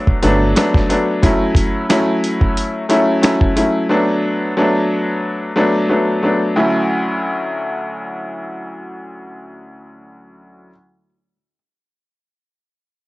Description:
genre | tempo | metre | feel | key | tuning
hip hop, boom-bap hip-hop | 90 BPM | 4/4 | swing 55% on 16ths | D major | A4 = 440 Hz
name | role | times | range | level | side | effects
bright upright piano | accompaniment | 0.0-10.7 s | D2 to E4 | -16 LUFS | left 1 dB | high-pass filter, low-pass filter, cassette tape, plate reverb
dusty soul sampler-style drum kit | drums | 0.1-3.7 s | hi-hat, kick drum, snare drum | -16 LUFS | equal | vintage 12-bit sampler grit, cassette tape
deep dub fingered electric bass | bass | 0.2-0.5 s | G1 | -16 LUFS | equal | tube saturation
room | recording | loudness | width
light reverb | home recording on cassette | -14 LUFS | side -19 dB against mid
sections
0.0-6.6 A section; 6.6-9.2 B section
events
none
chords
0.0 Gmaj9; 1.2 F#m7; 3.9 Bm7/F#; 6.6 Dmaj9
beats
0.56 | 1.23 1.90 2.56 3.23 | 3.90 4.56 5.23 5.90 | 6.56 7.23 7.90 8.56

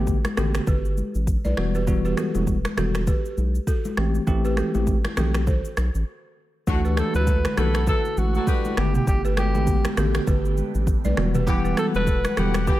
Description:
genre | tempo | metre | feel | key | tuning
afrobeats | 100 BPM | 4/4 | swing 58% on 16ths | G major | A4 = 440 Hz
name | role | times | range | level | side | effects
bell-like tine electric piano | accompaniment | 0.0-12.6 s | D3 to F#5 | -27 LUFS | left 1 dB | medium stereo tremolo
round analog bass | bass | 0.0-12.7 s | E1 to D2 | -24 LUFS | equal | none
afro-pop drum kit | drums | 0.1-12.8 s | finger snaps, kick drum, rim click, shaker, toms | -25 LUFS | equal | none
congas | percussion | 0.2-12.8 s | none | -31 LUFS | left 2 dB | none
balafon | riff | 0.4-12.8 s | F#4 to D5 | -32 LUFS | right 2 dB | tape echo
breathy alto saxophone | melody | 6.7-12.8 s | F#4 to B4 | -28 LUFS | equal | tape echo
mellow horn section | second line | 6.7-12.8 s | D3 to F#5 | -32 LUFS | left 3 dB | none
airy breathy pad | sustained chords | 7.1-12.8 s | D3 to F#5 | -32 LUFS | right 3 dB | chorus, phaser, sidechain pumping
room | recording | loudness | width
studio reverb | none | -20 LUFS | side -15 dB against mid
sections
0.0-6.7 A section; 6.7-12.8 B section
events
break 6.1-6.7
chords
0.0 Gadd9; 1.6 Emadd9; 4.0 Am7; 6.7 Dadd9; 8.8 Gadd9; 11.2 Emadd9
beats
0.07 0.67 1.27 | 1.87 2.47 3.07 3.67 | 4.27 4.87 5.47 6.07 | 6.67 7.27 7.87 8.47 | 9.07 9.67 10.27 10.87 | 11.47 12.07 12.67

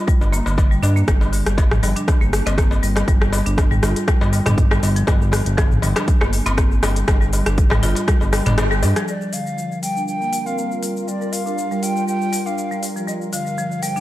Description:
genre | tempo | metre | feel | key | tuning
afro house | 120 BPM | 4/4 | swing 54% on 16ths | G minor | A4 = 440 Hz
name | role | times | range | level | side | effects
marimba with hard mallets | arpeggios | 0.1-14.0 s | D3 to F4 | -24 LUFS | equal | sidechain pumping, low-pass filter, tape echo
afro-pop drum kit | drums | 0.1-14.0 s | hi-hat, rim click, shaker, toms | -23 LUFS | left 1 dB | none
electronic kick drum | drums | 0.1-8.2 s | none | -17 LUFS | equal | overdrive
smooth synth bass | bass | 0.2-8.9 s | G1 to G2 | -19 LUFS | equal | sidechain pumping
darbuka | percussion | 0.2-8.9 s | none | -28 LUFS | left 2 dB | none
breathy hollow jazz flute | melody | 9.1-14.0 s | D5 to G5 | -25 LUFS | equal | tape echo
ethereal airy pad | sustained chords | 9.6-14.0 s | G2 to C5 | -28 LUFS | right 1 dB | ensemble chorus, built-in reverb, sidechain pumping
room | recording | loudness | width
light reverb | dry, gritty hardware recording | -16 LUFS | side -15 dB against mid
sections
0.0-9.1 A section; 9.1-14.0 B section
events
kick drops out 8.6-9.1; band accent 8.6; filter sweep on marimba 9.1-14.0; filter sweep on ambient pad 9.1-14.0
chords
0.0 G5; 9.1 Gm7; 13.1 Csus2/G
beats
0.08 0.58 | 1.08 1.58 2.08 2.58 | 3.08 3.58 4.08 4.58 | 5.08 5.58 6.08 6.58 | 7.08 7.58 8.08 8.58 | 9.08 9.58 10.08 10.58 | 11.08 11.58 12.08 12.58 | 13.08 13.58

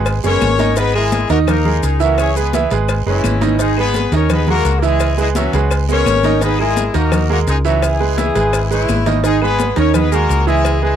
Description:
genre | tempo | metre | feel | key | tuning
latin, salsa | 170 BPM | 4/4 | straight | G# minor | A4 = 439 Hz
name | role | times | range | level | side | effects
clear horn section | melody | 0.0-11.0 s | E3 to C#5 | -18 LUFS | left 6 dB | none
bright baby grand piano | accompaniment | 0.0-11.0 s | D#3 to E5 | -18 LUFS | right 10 dB | none
hollow-body short-scale fingered electric bass | bass | 0.0-11.0 s | F#1 to D#2 | -17 LUFS | left 1 dB | none
claves | percussion | 0.1-10.8 s | none | -31 LUFS | left 24 dB | none
congas | percussion | 0.1-11.0 s | none | -24 LUFS | left 4 dB | none
cowbell | percussion | 0.1-10.8 s | none | -26 LUFS | left 5 dB | none
guiro | percussion | 0.1-9.2 s | none | -34 LUFS | right 24 dB | none
maracas | percussion | 0.1-10.8 s | none | -31 LUFS | left 28 dB | none
room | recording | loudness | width
little or no reverb | dry, close 1970s-style studio recording | -13 LUFS | side -9 dB against mid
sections
0.0-9.2 A section; 9.2-11.0 A section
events
none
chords
0.0 C#7(no3); 0.8 G#sus2; 2.2 C#m7; 3.6 G#madd9; 5.0 C#m7; 6.4 G#sus2; 7.8 C#m7; 9.2 G#madd9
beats
0.06 0.41 | 0.77 1.12 1.47 1.83 | 2.18 2.53 2.89 3.24 | 3.59 3.94 4.30 4.65 | 5.00 5.36 5.71 6.06 | 6.42 6.77 7.12 7.47 | 7.83 8.18 8.53 8.88 | 9.24 9.59 9.94 10.30 | 10.65

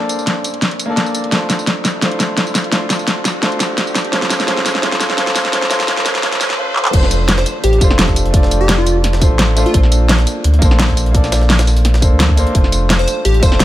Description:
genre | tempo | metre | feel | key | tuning
liquid drum and bass | 171 BPM | 4/4 | straight | F major | A4 = 439 Hz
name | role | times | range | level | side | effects
warm concert grand piano | accompaniment | 0.0-13.6 s | A3 to D5 | -20 LUFS | equal | tape echo
riser | sound effects | 0.2-6.9 s | none | -26 LUFS | equal | none
pop drum kit | drums | 0.1-13.6 s | crash cymbal, handclaps, hi-hat, snare drum, tambourine | -16 LUFS | equal | none
sub bass with octave | bass | 6.9-13.6 s | D1 to D2 | -14 LUFS | equal | none
electronic kick drum | drums | 6.9-13.5 s | none | -14 LUFS | equal | none
jungle sampler-style drum kit | drums | 6.9-13.6 s | hi-hat, snare drum | -24 LUFS | equal | high-pass filter on hats, high-pass filter on snare
plucky unison lead | melody | 7.4-9.8, 13.0-13.6 s | F4 to C5 | -20 LUFS | left 1 dB | tape echo
room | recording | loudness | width
light reverb | high-pass filter | -12 LUFS | side -14 dB against mid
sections
0.0-6.9 A section; 6.9-13.6 B section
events
build-up 0.0-6.9; drum fill 0.0-6.6, 6.8; riser 0.2-6.9; drop 6.9-13.6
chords
0.0 Bbmaj9; 1.3 F6; 4.1 Dbmaj7#5/A; 6.9 F6; 9.7 Bbmaj9; 12.5 F6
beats
0.27 0.62 0.97 | 1.32 1.67 2.02 2.37 | 2.72 3.08 3.43 3.78 | 4.13 4.48 4.83 5.18 | 5.53 5.88 6.23 6.58 | 6.93 7.29 7.64 7.99 | 8.34 8.69 9.04 9.39 | 9.74 10.09 10.44 10.79 | 11.14 11.50 11.85 12.20 | 12.55 12.90 13.25 13.60

